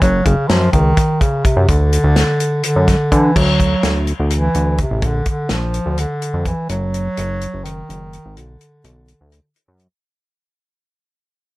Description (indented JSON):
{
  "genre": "progressive instrumental, band music in an uneven meter",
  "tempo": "252 BPM (eighths)",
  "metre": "7/8",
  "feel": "straight",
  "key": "unclear",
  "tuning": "A4 = 440 Hz",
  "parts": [
    { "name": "warm bass clarinet", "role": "melody", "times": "0.0-9.6 s", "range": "C3 to F#3", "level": "-18 LUFS", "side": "equal", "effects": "none" },
    { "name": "fat analog bass", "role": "bass", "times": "0.0-9.9 s", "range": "F#1 to D3", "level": "-17 LUFS", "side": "equal", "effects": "none" },
    { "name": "warm soul drum kit", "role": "drums", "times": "0.0-9.9 s", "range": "crash cymbal, hi-hat, kick drum, snare drum", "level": "-18 LUFS", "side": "equal", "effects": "none" }
  ],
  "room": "light reverb",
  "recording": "none",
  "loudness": "-14 LUFS",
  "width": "side -19 dB against mid",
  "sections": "0.0-3.4 A section; 3.4-10.0 B section",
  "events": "fade-out 3.4-10.0",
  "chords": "0.0 F#5; 1.7 D; 3.4 Dadd9; 5.0 Bb; 6.7 Ebmadd11/Gb; 8.4 Bm",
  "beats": "| 0.02 0.26 0.50 0.73 0.97 1.21 1.45 | 1.69 1.93 2.17 2.41 2.65 2.88 3.12 | 3.36 3.60 3.84 4.08 4.31 4.55 4.79 | 5.03 5.27 5.51 5.74 5.98 6.22 6.46 | 6.70 6.94 7.17 7.41 7.65 7.89 8.13 | 8.37 8.61 8.84 9.08 9.32 9.56 9.80"
}